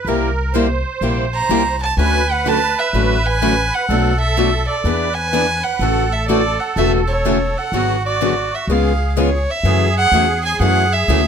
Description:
acoustic string swing (jazz manouche); 125 BPM; 4/4; swing 65% on 8ths; A major; A4 = 440 Hz
musette accordion; second line; 0.0-11.3 s; F#4 to C5; -23 LUFS; right 4 dB
upright bass; bass; 0.0-11.3 s; E1 to F#2; -20 LUFS; equal
picked steel-string acoustic guitar; accompaniment; 0.1-11.2 s; B2 to G#4; -20 LUFS; left 9 dB
picked steel-string acoustic guitar; accompaniment; 0.1-11.2 s; B2 to B4; -23 LUFS; right 8 dB
warm violin; melody; 1.3-11.3 s; C#5 to Bb5; -19 LUFS; right 2 dB
light reverb; close, detailed microphones; -14 LUFS; side -7 dB against mid
0.0-9.6 A section; 9.6-11.3 B section
0.1 C7; 2.0 Dmaj7; 3.9 Bm7; 4.8 E7; 5.8 A6; 7.7 G#m7b5; 8.7 C#7; 9.6 F#m7

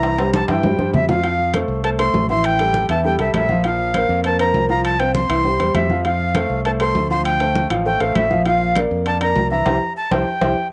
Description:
latin, salsa; 199 BPM; 4/4; straight; F major; A4 = 441 Hz
breathy bright jazz flute; melody; 0.0-10.7 s; E5 to C6; -23 LUFS; equal; cassette tape
warm baby grand piano; accompaniment; 0.0-10.5 s; E3 to F5; -23 LUFS; equal
modern bright fingered electric bass; bass; 0.0-10.5 s; A1 to G2; -25 LUFS; equal
congas; percussion; 0.0-10.5 s; -27 LUFS; equal
timbales; percussion; 0.0-10.5 s; -30 LUFS; equal
moderate spring reverb, RT60 1.6 s, small room ambience; home recording on cassette, nothing above 10.4 kHz; -18 LUFS; mono
0.0-1.2 A section; 1.2-10.7 A section
drum fill 0.0-1.2, 10.0-10.7; band accent 9.7-10.7
0.0 C; 1.2 Fmaj7; 2.4 A7(no3); 3.6 Bbsus2; 4.8 Csus4; 5.4 C; 6.0 F; 7.3 Dm7; 8.5 Bb; 9.7 C

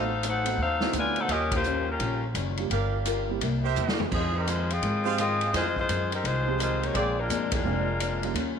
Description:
jazz, big band swing; 170 BPM; 4/4; swing 64% on 8ths; A4 = 438 Hz
clear saxophone section; melody; 0.0-8.5 s; F3 to Ab5; -28 LUFS; left 3 dB
picked old ladder-braced acoustic guitar; accompaniment; 0.0-8.6 s; F2 to Bb4; -35 LUFS; left 11 dB
warm concert grand piano; accompaniment; 0.0-8.3 s; F3 to G4; -35 LUFS; right 14 dB
bright trumpet section; stabs; 0.0-7.1 s; F4 to F5; -34 LUFS; right 12 dB
upright bass; bass; 0.0-8.6 s; F1 to Ab2; -30 LUFS; right 1 dB
swinging big-band drum kit; drums; 0.2-8.5 s; crash cymbal, hi-hat, kick drum, ride cymbal, snare drum, toms; -32 LUFS; equal
light reverb; 1960s-style stereo with parts hard left and right; -24 LUFS; side -7 dB against mid
0.0-8.6 A section
band accent 1.5, 7.5; drum fill 3.8-4.1
0.0 Adim7; 1.3 Eb9; 2.7 Gm7; 3.4 C7; 4.1 Fm7; 6.9 Bb9

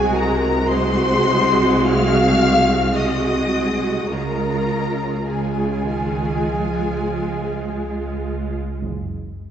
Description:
classical, slow romantic movement for string orchestra; 49-57 BPM; 4/4; rubato; A4 = 440 Hz
rich studio violin section; melody; 0.0-8.2 s; G#5 to E#6; -25 LUFS; left 4 dB
warm studio violin section; second line; 0.0-8.2 s; G#4 to E#5; -24 LUFS; left 1 dB
rich studio viola section; accompaniment; 0.0-8.6 s; G#3 to F#4; -22 LUFS; right 2 dB
rich studio cello section; bass; 0.0-8.8 s; B#2 to G#3; -25 LUFS; equal
rich studio double bass section; bass; 0.0-9.5 s; F#1 to C#2; -23 LUFS; right 1 dB
wet scoring stage reverb, RT60 1.7 s; heard from further back in the room, nothing above 7.8 kHz; -17 LUFS; side -9 dB against mid
0.0-8.8 A section
0.0 G#7/B#; 4.1 C#; 8.8 N.C.

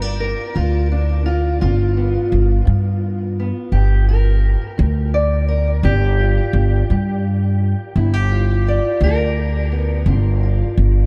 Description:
acoustic country blues, solo or duo; 57 BPM (dotted quarters); 12/8; straight; G mixolydian; A4 = 440 Hz
fingerpicked steel-string acoustic guitar; melody; 0.0-11.1 s; G2 to D5; -24 LUFS; equal; lush chorus, digital delay
upright bass; bass; 0.0-11.1 s; G1 to G2; -18 LUFS; equal
light reverb, studio reverb; -17 LUFS; mono
0.0-11.1 A section
steel-string acoustic guitar solo 0.0-11.1
0.0 G7

